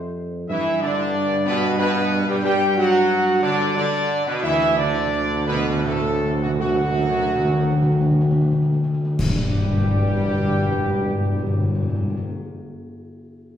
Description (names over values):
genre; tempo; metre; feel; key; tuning
classical, ceremonial fanfare; 63-93 BPM; 3/4; straight; unclear; A4 = 440 Hz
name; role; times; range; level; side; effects
dark trumpet section; melody; 0.0-12.2 s; F#4 to G5; -24 LUFS; right 1 dB; none
clear trombone section; sustained chords; 0.0-12.2 s; F#2 to G3; -27 LUFS; right 2 dB; none
mellow French horn section; sustained chords; 0.0-12.2 s; F#3 to G4; -26 LUFS; left 1 dB; none
mellow tuba; bass; 0.0-12.2 s; D2 to G2; -24 LUFS; right 1 dB; none
timpani; percussion; 4.4-12.2 s; G2 to D3; -22 LUFS; left 1 dB; none
clash cymbals and concert bass drum; percussion; 9.2-11.0 s; none; -26 LUFS; left 1 dB; none
room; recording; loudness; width
wet recital hall reverb, RT60 1.3 s; heard from further back in the room; -18 LUFS; side -9 dB against mid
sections
0.0-9.2 A section; 9.2-13.6 B section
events
slowing down 3.4-9.2; timpani fill 4.4-9.2; band accent 9.2-10.1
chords
0.5 G5; 4.4 D; 9.2 N.C.